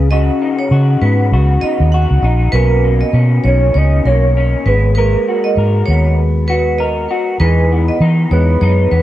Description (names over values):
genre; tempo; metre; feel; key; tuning
indie pop, bedroom pop; 99 BPM; 4/4; swing 60% on 16ths; unclear; A4 = 439 Hz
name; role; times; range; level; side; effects
electric guitar through a small old amp; accompaniment; 0.0-9.0 s; B2 to A#4; -18 LUFS; left 5 dB; analog chorus, warbly pitch drift, plate reverb
vintage muted fingered electric bass; bass; 0.0-9.0 s; G#1 to E3; -12 LUFS; equal; none
vibraphone with hard mallets; second line; 0.1-9.0 s; A#4 to F#5; -21 LUFS; right 4 dB; lush chorus, plate reverb, tape echo
soft octave-layered synth lead; melody; 2.5-9.0 s; G#4 to D#5; -19 LUFS; right 3 dB; tremolo, wide subtle chorus, plate reverb, tape echo
room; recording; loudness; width
light reverb; cassette tape; -11 LUFS; side -14 dB against mid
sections
0.0-9.0 A section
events
none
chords
0.0 C#9sus4; 2.5 Bmaj9; 4.7 G#m9; 7.4 Emaj7